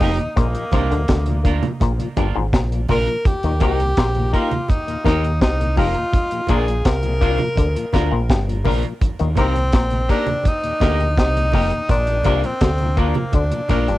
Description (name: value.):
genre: roots reggae.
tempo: 83 BPM.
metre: 4/4.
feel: straight.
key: Eb major.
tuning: A4 = 439 Hz.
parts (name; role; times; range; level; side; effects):
breathy tenor saxophone; melody; 0.0-14.0 s; Bb3 to Bb4; -23 LUFS; equal; cassette tape, dub echo.
clean electric guitar; accompaniment; 0.0-13.9 s; Bb3 to Bb4; -30 LUFS; right 7 dB; lush chorus, cassette tape, dub echo.
mellow tonewheel organ; accompaniment; 0.0-14.0 s; Eb2 to G4; -30 LUFS; left 5 dB; chorus vibrato, slow rotary speaker, cassette tape, dub echo.
auto-wah clav; riff; 0.0-14.0 s; F2 to Eb3; -27 LUFS; left 7 dB; overdrive, cassette tape.
deep dub fingered electric bass; bass; 0.0-14.0 s; F1 to Eb2; -20 LUFS; equal; none.
deep reggae drum kit; drums; 0.0-14.0 s; hi-hat, kick drum, snare drum; -18 LUFS; equal; cassette tape.
congas; percussion; 0.0-13.9 s; none; -28 LUFS; right 5 dB; none.
overdriven reed electric piano; stabs; 3.6-13.9 s; Bb3 to Bb4; -26 LUFS; left 7 dB; cassette tape, plate reverb.
room: light reverb.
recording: home recording on cassette.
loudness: -16 LUFS.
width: side -16 dB against mid.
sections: 0.0-14.0 A section.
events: none.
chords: 0.4 Bb; 3.3 Eb; 6.1 Bb; 9.0 Eb; 11.9 Bb.